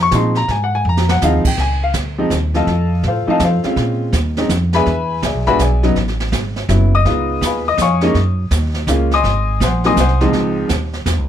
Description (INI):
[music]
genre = jazz, small-group swing and bop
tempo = 165 BPM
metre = 3/4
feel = swing 65% on 8ths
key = Db major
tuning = A4 = 437 Hz
[part]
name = warm grand piano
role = accompaniment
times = 0.0-10.7 s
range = Db2 to Eb6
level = -16 LUFS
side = left 2 dB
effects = none
[part]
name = upright bass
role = bass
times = 0.0-11.3 s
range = F#1 to Bb2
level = -17 LUFS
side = equal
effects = none
[part]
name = jazz brush drum kit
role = drums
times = 0.1-11.3 s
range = brushed snare drum, crash cymbal, hi-hat, kick drum, snare drum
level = -22 LUFS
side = right 3 dB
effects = none
[sound]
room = light reverb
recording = none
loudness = -14 LUFS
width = side -10 dB against mid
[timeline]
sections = 0.0-1.6 A section; 1.6-10.3 A section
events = drum fill 0.9-1.2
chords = 0.0 Dbmaj7 (rootless); 1.6 Dbmaj9; 2.7 F7; 3.8 Bbm11; 4.9 E7; 6.0 A69; 7.1 Db7; 8.1 Gbmaj7; 9.2 Ab7; 10.3 Dbmaj7